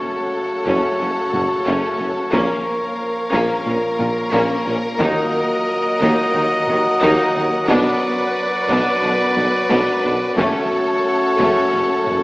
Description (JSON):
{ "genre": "cinematic, epic orchestral film score", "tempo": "90 BPM", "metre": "4/4", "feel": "straight", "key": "unclear", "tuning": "A4 = 440 Hz", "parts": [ { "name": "warm symphonic violin section", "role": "melody", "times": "0.0-12.2 s", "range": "A4 to B4", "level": "-25 LUFS", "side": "left 1 dB", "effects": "none" }, { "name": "clear symphonic string section", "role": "sustained chords", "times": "0.0-12.2 s", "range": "Bb3 to Gb5", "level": "-28 LUFS", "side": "equal", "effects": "none" }, { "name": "mellow French horn section", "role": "sustained chords", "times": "0.0-12.2 s", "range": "A3 to Bb4", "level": "-24 LUFS", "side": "left 1 dB", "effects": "none" }, { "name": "mellow trombone section", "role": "sustained chords", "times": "0.0-12.2 s", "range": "F#2 to A3", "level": "-28 LUFS", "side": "equal", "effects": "none" }, { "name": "warm trumpet", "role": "stabs", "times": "0.0-12.2 s", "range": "Db5 to Eb5", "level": "-22 LUFS", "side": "equal", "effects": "none" }, { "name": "warm symphonic violin section", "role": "second line", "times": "0.6-12.2 s", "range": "A3 to Gb4", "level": "-26 LUFS", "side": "left 1 dB", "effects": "none" }, { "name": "rich symphonic viola section", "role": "accompaniment", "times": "0.7-12.1 s", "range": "Db4 to Eb4", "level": "-27 LUFS", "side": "equal", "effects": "none" }, { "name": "mellow tuba", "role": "bass", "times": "0.7-12.2 s", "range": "Gb1 to Eb2", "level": "-26 LUFS", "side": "equal", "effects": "none" }, { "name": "rich symphonic cello section", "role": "bass", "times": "0.7-12.2 s", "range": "Gb2 to Eb3", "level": "-25 LUFS", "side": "equal", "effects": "none" }, { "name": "warm symphonic double bass section", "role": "bass", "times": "0.7-12.1 s", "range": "Gb1 to Eb2", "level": "-30 LUFS", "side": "equal", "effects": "none" }, { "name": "taiko ensemble", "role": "drums", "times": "0.7-12.2 s", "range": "none", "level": "-27 LUFS", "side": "equal", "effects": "none" } ], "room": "wet concert hall reverb, RT60 2.0 s", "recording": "small speaker sound", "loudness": "-16 LUFS", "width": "side -22 dB against mid", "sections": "0.0-12.2 A section", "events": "none", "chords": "0.0 Gbm; 2.3 Bbm; 5.0 Ebm; 7.7 Bm; 10.4 Gbm" }